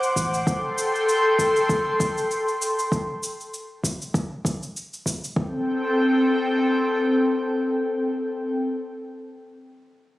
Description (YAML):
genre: sunset chillout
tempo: 98 BPM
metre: 4/4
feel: swing 56% on 16ths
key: A dorian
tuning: A4 = 439 Hz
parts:
  - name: airy breathy pad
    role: sustained chords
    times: 0.0-8.6 s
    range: C4 to D6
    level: -21 LUFS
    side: left 1 dB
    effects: chorus, vintage 12-bit sampler grit
  - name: shaker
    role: drums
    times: 0.0-5.3 s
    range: none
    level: -32 LUFS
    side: equal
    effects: overdrive
  - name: drifting glass-harmonics texture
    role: texture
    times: 0.0-0.5 s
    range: C6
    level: -35 LUFS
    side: right 2 dB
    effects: none
  - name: electronic kick drum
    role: drums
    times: 0.2-5.5 s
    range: none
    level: -26 LUFS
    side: equal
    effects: overdrive
room: wet lush hall reverb, RT60 2.0 s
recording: recorded on a phone in the room, studio reverb, compression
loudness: -21 LUFS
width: side -16 dB against mid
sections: 0.0-5.4 A section; 5.4-7.8 B section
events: none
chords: 0.5 Am7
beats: | 0.46 1.08 1.69 2.30 | 2.91 3.52 4.14 4.75 | 5.36 5.97 6.59 7.20